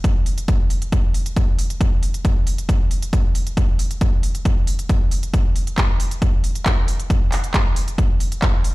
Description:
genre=techno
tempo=136 BPM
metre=4/4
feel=straight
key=none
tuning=none
part: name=electronic kick drum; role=drums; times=0.0-8.5 s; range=none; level=-17 LUFS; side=equal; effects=none
part: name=techno drum kit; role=drums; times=0.0-8.7 s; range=handclaps, hi-hat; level=-27 LUFS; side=right 1 dB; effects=none
room=little or no reverb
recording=played on a big sound system in a bare room, large studio reverb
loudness=-17 LUFS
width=side -20 dB against mid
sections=0.0-8.7 A section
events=none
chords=none

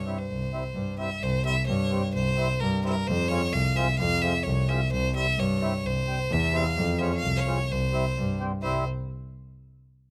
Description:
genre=klezmer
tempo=129 BPM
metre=2/4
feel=straight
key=C phrygian dominant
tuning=A4 = 436 Hz
part: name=bright violin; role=melody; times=0.0-8.8 s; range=Bb4 to F5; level=-32 LUFS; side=equal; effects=plate reverb
part: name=warm double bass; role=bass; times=0.0-8.8 s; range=C2 to G2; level=-29 LUFS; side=equal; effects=none
part: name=mellow accordion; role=accompaniment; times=0.1-8.8 s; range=G3 to G4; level=-35 LUFS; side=equal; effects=plate reverb
room=little or no reverb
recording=rough home demo mix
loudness=-26 LUFS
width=mono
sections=0.0-1.2 A section; 1.2-8.6 B section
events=none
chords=0.0 C; 3.1 Fm; 4.9 C; 6.8 Fm; 7.7 C

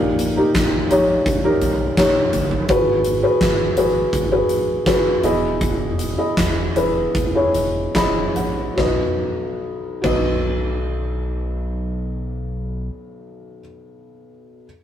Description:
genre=piano-driven pop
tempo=71-84 BPM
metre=4/4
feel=straight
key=B major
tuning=A4 = 440 Hz
part: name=felt-muted upright piano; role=accompaniment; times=0.0-14.7 s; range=B1 to B5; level=-19 LUFS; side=left 1 dB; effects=none
part: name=chorused synth bass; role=bass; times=0.0-12.9 s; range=E1 to B1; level=-27 LUFS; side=equal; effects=none
part: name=huge arena drum kit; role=drums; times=0.2-10.3 s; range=crash cymbal, hi-hat, kick drum, snare drum, toms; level=-22 LUFS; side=equal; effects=none
room=moderate studio reverb, RT60 0.6 s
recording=rough rehearsal-room recording, warm saturation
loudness=-17 LUFS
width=side -10 dB against mid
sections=0.0-8.8 A section; 8.8-12.1 B section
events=slowing down 2.7-8.8; felt piano fill 7.5-8.8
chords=0.0 D#/A#; 2.7 G#m7; 5.2 Emaj7; 8.8 B

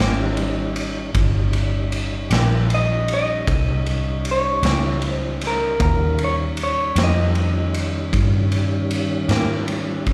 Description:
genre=slow blues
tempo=52 BPM (dotted quarters)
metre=12/8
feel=straight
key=Eb mixolydian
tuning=A4 = 439 Hz
part: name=clean electric guitar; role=accompaniment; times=0.0-9.5 s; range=Eb3 to G4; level=-29 LUFS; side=equal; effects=tremolo, slapback echo
part: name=tonewheel organ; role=sustained chords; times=0.0-10.1 s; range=Eb3 to Eb4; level=-30 LUFS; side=equal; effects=slow rotary speaker, chorus vibrato
part: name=vintage muted fingered electric bass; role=bass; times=0.0-10.1 s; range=G1 to Ab2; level=-23 LUFS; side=equal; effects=none
part: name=raw garage drum kit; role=drums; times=0.0-10.1 s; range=kick drum, ride cymbal, snare drum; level=-27 LUFS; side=equal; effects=none
part: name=electric guitar through a small old amp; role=melody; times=2.7-10.1 s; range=Bb4 to Eb5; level=-26 LUFS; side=equal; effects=slapback echo
room=small room ambience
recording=live gig heard through the venue's PA, club reverb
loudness=-20 LUFS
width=mono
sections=0.0-10.1 A section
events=none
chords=0.0 Eb7

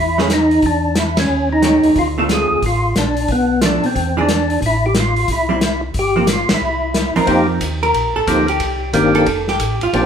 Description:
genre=soul jazz organ trio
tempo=181 BPM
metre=4/4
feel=swing 64% on 8ths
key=unclear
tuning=A4 = 439 Hz
part: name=percussive tonewheel organ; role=melody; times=0.0-10.1 s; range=Eb3 to A4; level=-16 LUFS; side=equal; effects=slow rotary speaker, overdrive, chorus vibrato
part: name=mellow tonewheel organ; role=bass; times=0.0-10.1 s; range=F1 to B2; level=-22 LUFS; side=equal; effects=slow rotary speaker
part: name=hollow-body jazz guitar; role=accompaniment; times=0.2-10.1 s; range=D3 to B4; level=-19 LUFS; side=right 2 dB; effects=none
part: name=warm soul drum kit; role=drums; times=0.2-10.0 s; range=hi-hat, kick drum, ride cymbal, snare drum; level=-21 LUFS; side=left 1 dB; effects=none
room=moderate large studio reverb, RT60 1.2 s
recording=band playing live in one room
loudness=-13 LUFS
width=side -8 dB against mid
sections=0.0-7.3 A section; 7.3-10.1 B section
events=band accent 1.1, 6.4; hollow-body jazz guitar solo 7.3-10.1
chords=0.0 Amaj9; 0.6 Dbm/Fb; 1.3 Eb7#11; 2.0 Dm7; 3.3 Bm7b5; 4.0 Eaug7; 4.6 Am; 5.9 Gm7; 6.6 C7; 7.3 F7sus4; 8.6 Cm7; 9.3 F

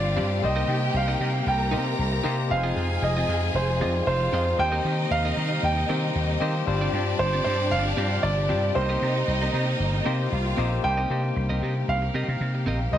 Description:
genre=disco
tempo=115 BPM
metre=4/4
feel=straight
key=C minor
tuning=A4 = 437 Hz
part: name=warm concert grand piano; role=melody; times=0.0-13.0 s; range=C5 to G5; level=-28 LUFS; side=right 2 dB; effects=none
part: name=warm studio string section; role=second line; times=0.0-10.8 s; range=D4 to Bb5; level=-30 LUFS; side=equal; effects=none
part: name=barky tine electric piano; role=accompaniment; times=0.0-13.0 s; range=G3 to D5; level=-32 LUFS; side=left 6 dB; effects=overdrive, auto-pan
part: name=clean electric guitar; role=accompaniment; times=0.0-13.0 s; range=C4 to Eb5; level=-33 LUFS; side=right 3 dB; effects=none
part: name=clear studio string section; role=sustained chords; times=0.0-13.0 s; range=C3 to G4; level=-33 LUFS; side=left 1 dB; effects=none
part: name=vintage slap bass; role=bass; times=0.0-13.0 s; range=F1 to Eb3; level=-26 LUFS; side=equal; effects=none
room=light reverb, small room reverb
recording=none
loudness=-22 LUFS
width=side -10 dB against mid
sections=0.0-10.8 A section; 10.8-13.0 B section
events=none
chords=0.4 Cm7; 2.5 Fm7; 4.6 Cm7/Eb; 6.7 G7sus4; 8.8 Cm7

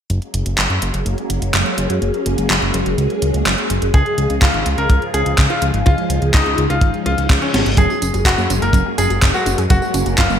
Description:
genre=italo disco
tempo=125 BPM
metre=4/4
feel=straight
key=F# major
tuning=A4 = 440 Hz
part: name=phased string machine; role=sustained chords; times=0.1-10.4 s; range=C#3 to A#4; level=-22 LUFS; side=equal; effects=ensemble chorus, phaser
part: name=fat analog bass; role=bass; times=0.1-10.4 s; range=F#1 to F#2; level=-19 LUFS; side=equal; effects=none
part: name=gated 80s digital drum machine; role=drums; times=0.1-10.4 s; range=handclaps, hi-hat, snare drum, tambourine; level=-20 LUFS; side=right 1 dB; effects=gated reverb, gated reverb snare, overdrive
part: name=bright grand piano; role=melody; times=3.9-10.4 s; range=C#4 to A#4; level=-20 LUFS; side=left 1 dB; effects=digital delay
part: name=kick drum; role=drums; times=3.9-10.3 s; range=none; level=-14 LUFS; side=equal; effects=none
part: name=reverse cymbal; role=sound effects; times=7.2-7.8 s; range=none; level=-29 LUFS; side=left 2 dB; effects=none
part: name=analog pluck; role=arpeggios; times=7.8-10.4 s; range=F#3 to G#4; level=-25 LUFS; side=right 4 dB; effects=chorus, digital delay
room=moderate plate reverb, RT60 1.8 s, studio reverb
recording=bright 1980s-style digital production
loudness=-14 LUFS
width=side -8 dB against mid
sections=0.1-7.8 A section; 7.8-10.4 B section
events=reverse cymbal 7.2-7.8; drum fill 7.5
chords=0.1 F#add9; 3.9 C#; 7.8 F#add9

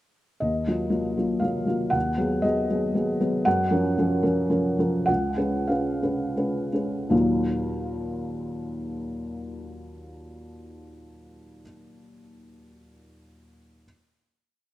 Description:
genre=neoclassical minimalist piano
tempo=79-120 BPM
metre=3/4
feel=rubato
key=Eb minor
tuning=A4 = 444 Hz
part: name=felt-muted upright piano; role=solo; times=0.4-13.9 s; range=Db2 to F#5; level=-23 LUFS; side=equal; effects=none
room=moderate lush hall reverb, RT60 2.9 s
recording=rough home demo mix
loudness=-23 LUFS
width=side -15 dB against mid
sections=0.4-7.1 A section; 7.1-11.6 final chord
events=slowing down 2.7-7.1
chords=0.4 Ebmadd9; 1.9 B6/D#; 3.5 Gbmaj7; 5.1 Db7; 7.1 Ebmadd9

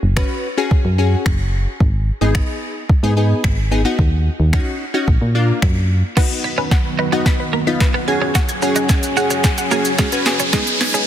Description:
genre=dance-pop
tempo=110 BPM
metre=4/4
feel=straight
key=unclear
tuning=A4 = 440 Hz
part: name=solid FM bass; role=bass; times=0.0-6.0 s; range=Gb1 to Bb2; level=-16 LUFS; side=equal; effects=sidechain pumping
part: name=wavetable chord stab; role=accompaniment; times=0.2-11.1 s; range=Bb3 to Cb5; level=-21 LUFS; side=left 1 dB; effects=sidechain pumping
part: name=smooth R&B drum kit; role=drums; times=0.2-11.1 s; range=crash cymbal, finger snaps, hi-hat, kick drum, shaker, snare drum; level=-18 LUFS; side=equal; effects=overdrive, soft clipping on snare
part: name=warm analog pad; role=sustained chords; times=6.5-11.1 s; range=D#3 to Cb5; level=-24 LUFS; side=equal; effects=chorus, sidechain pumping
part: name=wide unison pluck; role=arpeggios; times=6.2-11.0 s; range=Ab4 to B6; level=-24 LUFS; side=left 1 dB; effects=auto-pan, sidechain pumping, digital delay
part: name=twelve-string electric guitar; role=riff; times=6.2-11.0 s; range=Ab3 to Gb4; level=-24 LUFS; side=right 6 dB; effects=wide subtle chorus
part: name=riser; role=sound effects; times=8.0-11.1 s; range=none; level=-24 LUFS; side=right 1 dB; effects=none
room=light reverb, digital ambience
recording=dense, heavily limited modern master, high-pass filter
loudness=-14 LUFS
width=side -10 dB against mid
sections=0.0-6.2 A section; 6.2-11.1 B section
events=build-up 6.2-11.1; drum fill 6.2-11.1; filter sweep 6.2-11.1; riser 8.0-11.1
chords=0.0 Gbsus2; 1.8 Abm; 4.0 Ebm7; 5.1 Bb; 6.2 B; 8.1 Gbsus2; 10.5 Abm

